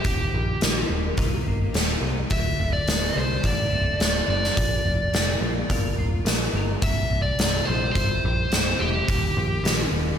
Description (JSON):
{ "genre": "quiet-loud alternative rock", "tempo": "106 BPM", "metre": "4/4", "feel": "straight", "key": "unclear", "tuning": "A4 = 438 Hz", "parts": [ { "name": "biting lead guitar", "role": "melody", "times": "0.0-9.9 s", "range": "G4 to E5", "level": "-27 LUFS", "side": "equal", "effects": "overdrive, slapback echo, digital delay" }, { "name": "twelve-string electric guitar", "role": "arpeggios", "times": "0.0-10.2 s", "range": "C2 to Bb4", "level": "-32 LUFS", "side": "left 2 dB", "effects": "ensemble chorus" }, { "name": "picked electric bass", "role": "bass", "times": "0.0-10.1 s", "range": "C1 to C2", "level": "-27 LUFS", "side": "equal", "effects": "none" }, { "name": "oversized low-tuned drum kit", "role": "drums", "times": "0.0-9.8 s", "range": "hi-hat, kick drum, snare drum", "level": "-24 LUFS", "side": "equal", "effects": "none" } ], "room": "light reverb, small room ambience", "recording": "none", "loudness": "-21 LUFS", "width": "side -8 dB against mid", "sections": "0.0-10.2 A section", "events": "none", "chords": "0.0 Eb; 2.3 D; 4.6 Bb; 6.8 C; 9.1 Eb", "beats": "| 0.05 0.61 1.18 1.75 | 2.31 2.88 3.44 4.01 | 4.57 5.14 5.70 6.27 | 6.83 7.39 7.96 8.52 | 9.08 9.64" }